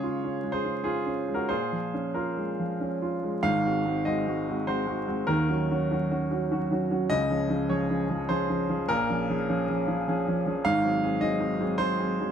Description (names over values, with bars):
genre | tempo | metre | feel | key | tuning
neoclassical minimalist piano | 90-106 BPM | 3/4 | rubato | unclear | A4 = 439 Hz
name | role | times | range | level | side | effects
clear baby grand piano | solo | 0.0-12.3 s | Ab1 to F5 | -25 LUFS | equal | none
room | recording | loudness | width
wet spring reverb, RT60 1.3 s | heard from further back in the room, vinyl crackle | -25 LUFS | side -8 dB against mid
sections
0.0-3.5 A section; 3.5-12.3 B section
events
none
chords
0.0 Db; 1.5 Bbm7; 3.5 Ab7; 5.3 Ebm7; 7.1 Dbmaj7; 8.9 Bbm7; 10.7 Ab7